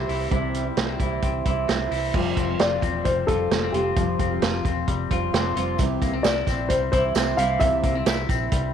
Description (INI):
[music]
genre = jangly indie pop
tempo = 132 BPM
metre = 4/4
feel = straight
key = unclear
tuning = A4 = 439 Hz
[part]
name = dark upright piano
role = melody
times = 0.0-8.7 s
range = G4 to F5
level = -26 LUFS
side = left 2 dB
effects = slapback echo
[part]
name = fingerpicked steel-string acoustic guitar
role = accompaniment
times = 0.0-8.7 s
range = C3 to F4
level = -29 LUFS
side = right 11 dB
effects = none
[part]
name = semi-hollow electric guitar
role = arpeggios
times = 0.0-8.7 s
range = C3 to F4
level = -28 LUFS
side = left 12 dB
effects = lush chorus
[part]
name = vintage muted fingered electric bass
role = bass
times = 0.0-8.7 s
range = E1 to C2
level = -29 LUFS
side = left 1 dB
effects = none
[part]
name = vintage drum kit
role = drums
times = 0.1-8.6 s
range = crash cymbal, hi-hat, kick drum, snare drum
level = -25 LUFS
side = right 2 dB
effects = none
[part]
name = tambourine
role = percussion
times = 5.8-8.4 s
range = none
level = -42 LUFS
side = right 10 dB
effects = none
[sound]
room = moderate plate reverb, RT60 2.0 s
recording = 1960s-style stereo with parts hard left and right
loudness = -20 LUFS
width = side -8 dB against mid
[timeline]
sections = 0.0-2.1 A section; 2.1-8.7 B section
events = none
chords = 0.0 C; 2.1 Fsus2; 5.8 C